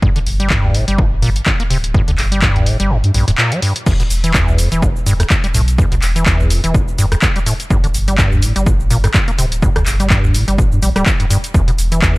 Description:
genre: acid house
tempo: 125 BPM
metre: 4/4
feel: swing 56% on 16ths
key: unclear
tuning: A4 = 440 Hz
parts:
  - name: acid bass, square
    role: riff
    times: 0.0-12.2 s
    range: E2 to Bb3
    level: -17 LUFS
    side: equal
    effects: tube saturation, sidechain pumping
  - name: warm sub bass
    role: bass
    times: 0.0-12.2 s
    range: D1 to G2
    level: -17 LUFS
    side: equal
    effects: sidechain pumping
  - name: electronic kick drum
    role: drums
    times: 0.0-12.1 s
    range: none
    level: -16 LUFS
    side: equal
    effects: overdrive
  - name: punchy analog drum machine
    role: drums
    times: 0.2-12.1 s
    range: cabasa, crash cymbal, handclaps, hi-hat, rim click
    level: -19 LUFS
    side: equal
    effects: none
room: little or no reverb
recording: dry, gritty hardware recording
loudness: -12 LUFS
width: side -23 dB against mid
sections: 0.0-12.2 A section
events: kick drops out 2.9-3.9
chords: 0.0 G5; 3.9 E5; 7.7 G5; 11.5 N.C.

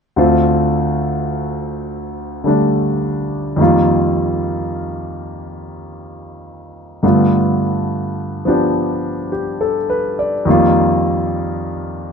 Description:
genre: jazz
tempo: 70 BPM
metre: 4/4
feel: swing 67% on 8ths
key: unclear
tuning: A4 = 439 Hz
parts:
  - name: clear concert grand piano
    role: accompaniment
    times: 0.2-12.1 s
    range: D2 to D5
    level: -15 LUFS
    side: equal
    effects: none
room: little or no reverb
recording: close, detailed microphones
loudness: -14 LUFS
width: side -6 dB against mid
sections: 0.2-12.1 A section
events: none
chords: 0.2 Dm7; 3.6 F9sus4; 7.0 G9; 10.5 F9sus4

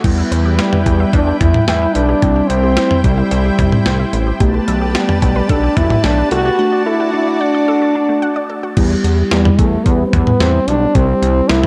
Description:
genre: synth-pop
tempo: 110 BPM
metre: 4/4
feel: straight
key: E minor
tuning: A4 = 440 Hz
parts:
  - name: muted felt-like synth keys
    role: accompaniment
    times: 0.0-11.7 s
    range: G3 to G4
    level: -22 LUFS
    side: equal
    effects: chorus
  - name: lush unison pad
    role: sustained chords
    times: 0.0-8.7 s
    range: E4 to A5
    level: -26 LUFS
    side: equal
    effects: chorus
  - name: unison pluck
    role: arpeggios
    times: 0.0-8.7 s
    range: A3 to G5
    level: -28 LUFS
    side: equal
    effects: phaser, slapback echo
  - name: chorused synth bass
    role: bass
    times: 0.0-11.7 s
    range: A1 to E2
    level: -19 LUFS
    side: equal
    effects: none
  - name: clean 12-bit digital drum machine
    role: drums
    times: 0.0-11.7 s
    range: crash cymbal, hi-hat, kick drum, snare drum, toms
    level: -18 LUFS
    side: equal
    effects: none
  - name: warm French horn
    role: melody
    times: 0.6-11.7 s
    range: G3 to F#4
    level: -18 LUFS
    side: equal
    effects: slapback echo
room: moderate lush hall reverb, RT60 1.9 s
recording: dark, warm production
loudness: -14 LUFS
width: mono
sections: 0.0-8.8 A section; 8.8-11.7 B section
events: none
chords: 0.0 Em; 2.2 C; 4.4 Gadd9/B; 6.6 D; 8.8 Em; 11.0 C

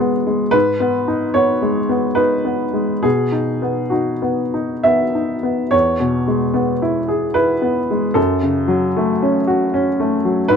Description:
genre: neoclassical minimalist piano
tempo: 63-80 BPM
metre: 3/4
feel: rubato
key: E major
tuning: A4 = 440 Hz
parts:
  - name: warm upright piano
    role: solo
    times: 0.0-10.6 s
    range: E2 to E5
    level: -15 LUFS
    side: equal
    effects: none
room: moderate booth ambience, RT60 0.2 s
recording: none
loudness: -15 LUFS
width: side -6 dB against mid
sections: 0.0-5.7 A section; 5.7-10.6 B section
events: none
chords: 0.0 B6; 0.5 G#m; 3.0 B; 5.7 E; 8.2 F#m

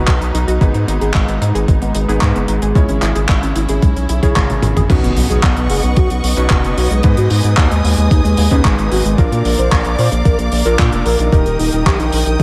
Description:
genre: italo disco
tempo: 112 BPM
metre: 4/4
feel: straight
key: G# minor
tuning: A4 = 440 Hz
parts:
  - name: rich symphonic string section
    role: sustained chords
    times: 0.0-12.4 s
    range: F#3 to D#6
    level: -25 LUFS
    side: equal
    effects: none
  - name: analog pluck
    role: arpeggios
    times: 0.0-4.9 s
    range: F#3 to G#4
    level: -26 LUFS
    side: equal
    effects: chorus, tape echo
  - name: warm electric grand piano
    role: stabs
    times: 0.0-12.4 s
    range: G#2 to C#5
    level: -26 LUFS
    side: equal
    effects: tape echo
  - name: round analog bass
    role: bass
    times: 0.0-12.4 s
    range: D#1 to A#2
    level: -19 LUFS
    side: equal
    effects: none
  - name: damped 70s drum kit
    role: drums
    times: 0.1-12.4 s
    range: crash cymbal, handclaps, hi-hat, toms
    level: -23 LUFS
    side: equal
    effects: small room ambience, gated reverb
  - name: electronic kick drum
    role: drums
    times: 0.1-12.4 s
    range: none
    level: -16 LUFS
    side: equal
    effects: overdrive, small room ambience
  - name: soft octave-layered synth lead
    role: melody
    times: 4.9-12.4 s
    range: G#3 to B#4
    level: -21 LUFS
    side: equal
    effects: chorus, phaser, tape echo
  - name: impact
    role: sound effects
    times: 5.0-7.0 s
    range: none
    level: -25 LUFS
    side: equal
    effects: none
room: light reverb, small room ambience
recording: none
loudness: -14 LUFS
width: mono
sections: 0.0-4.9 A section; 4.9-12.4 B section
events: drum fill 4.4-4.9; impact 4.9-7.0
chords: 0.0 B; 0.6 G#m; 2.8 C#m; 4.9 Badd9; 7.0 G#m; 9.2 A#; 11.3 D#

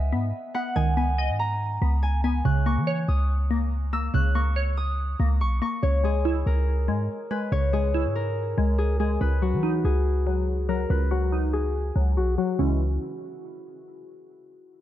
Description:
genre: hip hop, trap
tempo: 142 BPM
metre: 4/4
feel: half-time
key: C# dorian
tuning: A4 = 439 Hz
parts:
  - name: Celtic harp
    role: melody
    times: 0.0-12.8 s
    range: E4 to F#6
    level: -30 LUFS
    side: left 2 dB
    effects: low-pass filter
  - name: glassy wavetable pluck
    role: accompaniment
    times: 0.0-12.8 s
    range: C#2 to D#5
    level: -29 LUFS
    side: equal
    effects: chorus, low-pass filter
  - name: warm 808-style bass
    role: bass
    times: 0.0-13.0 s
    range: B1 to E3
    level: -24 LUFS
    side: equal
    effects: none
room: light reverb, small room reverb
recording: dark, warm production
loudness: -22 LUFS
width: side -12 dB against mid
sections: 0.0-5.8 A section; 5.8-12.6 B section; 12.6-14.3 C section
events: filter sweep 5.8-12.6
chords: 0.0 G#m/C#; 2.5 Bmaj9 (rootless); 5.8 C#m; 9.2 B/C#; 12.6 N.C.

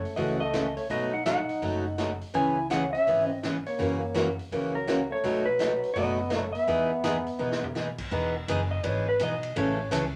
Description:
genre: country, western swing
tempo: 166 BPM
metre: 4/4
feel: swing 64% on 8ths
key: E major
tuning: A4 = 440 Hz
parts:
  - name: clean lap steel guitar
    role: melody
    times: 0.0-9.9 s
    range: A#4 to G#5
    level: -31 LUFS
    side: equal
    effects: none
  - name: warm French horn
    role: second line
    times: 0.0-7.9 s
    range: F#3 to E4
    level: -37 LUFS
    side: equal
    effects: none
  - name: upright bass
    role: bass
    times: 0.0-10.2 s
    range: E1 to F#2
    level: -38 LUFS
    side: equal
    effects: none
  - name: swinging big-band drum kit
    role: drums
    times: 0.0-10.0 s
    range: crash cymbal, hi-hat, kick drum, ride cymbal, snare drum, toms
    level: -40 LUFS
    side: equal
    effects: none
  - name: picked steel-string acoustic guitar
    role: accompaniment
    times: 0.2-10.0 s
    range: B2 to A4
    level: -32 LUFS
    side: equal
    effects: none
room: wet club reverb, RT60 0.7 s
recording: none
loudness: -28 LUFS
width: mono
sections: 0.0-8.1 A section; 8.1-10.2 B section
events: drum fill 7.4-7.8; electric slide guitar solo 8.1-10.2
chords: 0.0 F#m7; 0.9 B7; 2.3 C#m7; 3.8 F#7; 5.2 B7; 6.7 Emaj7; 9.6 A

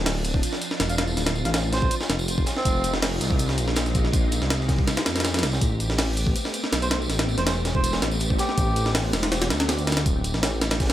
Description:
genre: drum and bass, jungle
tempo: 162 BPM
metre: 4/4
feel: straight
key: unclear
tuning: A4 = 440 Hz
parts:
  - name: soft string machine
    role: sustained chords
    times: 0.0-10.9 s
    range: F3 to G4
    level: -32 LUFS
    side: equal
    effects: ensemble chorus
  - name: dark detuned saw bass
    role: bass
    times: 0.0-10.9 s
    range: D1 to F2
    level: -25 LUFS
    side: equal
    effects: none
  - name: breakbeat sampler-style drum kit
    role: drums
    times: 0.1-10.9 s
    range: hi-hat, kick drum, snare drum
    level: -24 LUFS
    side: equal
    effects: studio reverb
  - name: crunchy breakbeat drum kit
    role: drums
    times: 0.1-10.9 s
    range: hi-hat, snare drum, tambourine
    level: -32 LUFS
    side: right 1 dB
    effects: high-pass filter on hats, studio reverb, high-pass filter on snare, high-pass filter on perc, high-pass filter on room
  - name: melodica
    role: melody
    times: 0.9-2.9, 6.8-8.9 s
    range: C4 to F5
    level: -31 LUFS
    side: right 1 dB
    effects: vintage 12-bit sampler grit, dub echo
room: small room ambience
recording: none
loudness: -21 LUFS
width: side -13 dB against mid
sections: 0.0-10.9 A section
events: none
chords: 0.0 Dm9; 1.9 Fm9; 5.6 Am9; 10.1 Dm9

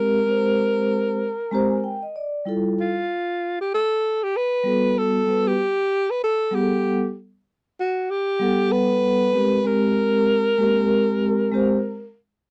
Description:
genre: hip hop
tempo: 96 BPM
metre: 4/4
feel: swing 58% on 16ths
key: unclear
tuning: A4 = 440 Hz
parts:
  - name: breathy alto saxophone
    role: melody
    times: 0.0-12.2 s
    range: F4 to B4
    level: -24 LUFS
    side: equal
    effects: none
  - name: vibraphone with soft mallets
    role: accompaniment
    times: 0.0-11.8 s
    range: G3 to Bb5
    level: -24 LUFS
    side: equal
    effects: none
room: light reverb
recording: dry, close 1970s-style studio recording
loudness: -22 LUFS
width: mono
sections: 0.0-7.5 A section; 7.5-12.5 A section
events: vibraphone fill 1.2-2.5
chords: 0.0 Abmaj9; 2.5 Fmaj9; 4.7 Gmaj9; 9.7 Abmaj9

